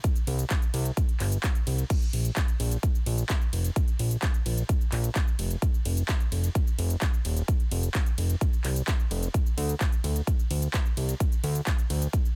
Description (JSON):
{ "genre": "EDM, festival progressive house", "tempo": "129 BPM", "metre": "4/4", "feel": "straight", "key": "unclear", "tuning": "A4 = 440 Hz", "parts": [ { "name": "big-room dance drum kit", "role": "drums", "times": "0.0-12.3 s", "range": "crash cymbal, handclaps, hi-hat, ride cymbal, shaker", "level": "-37 LUFS", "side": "equal", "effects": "none" }, { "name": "electronic kick drum", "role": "drums", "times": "0.0-12.2 s", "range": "none", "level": "-27 LUFS", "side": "equal", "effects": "none" }, { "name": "fat analog bass", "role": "bass", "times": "0.3-12.1 s", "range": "Eb1 to D2", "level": "-29 LUFS", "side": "equal", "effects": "sidechain pumping" } ], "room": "little or no reverb", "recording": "dense, heavily limited modern master", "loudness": "-27 LUFS", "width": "mono", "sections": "0.0-12.4 A section", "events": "none", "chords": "none" }